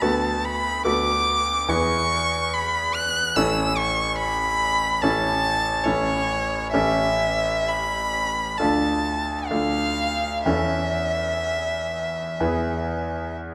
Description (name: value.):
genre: classical, romantic duo for violin and grand piano.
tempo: 59-73 BPM.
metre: 4/4.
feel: rubato.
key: A major.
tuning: A4 = 440 Hz.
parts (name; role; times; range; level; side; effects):
warm violin; melody; 0.0-13.3 s; C#5 to F#6; -26 LUFS; equal; none.
bright concert grand piano; accompaniment; 0.0-13.5 s; A1 to A4; -27 LUFS; equal; none.
room: wet recital hall reverb, RT60 1.5 s.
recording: none.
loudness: -23 LUFS.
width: mono.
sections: 0.0-13.5 A section.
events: none.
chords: 0.0 Bm7/D; 1.7 E; 3.4 A; 6.7 A7; 8.6 Dm; 10.5 A/E; 12.4 E.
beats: | 0.01 0.84 1.69 2.53 | 3.36 4.21 5.04 5.87 | 6.74 7.71 8.60 9.50 | 10.46 11.45 12.41 13.39.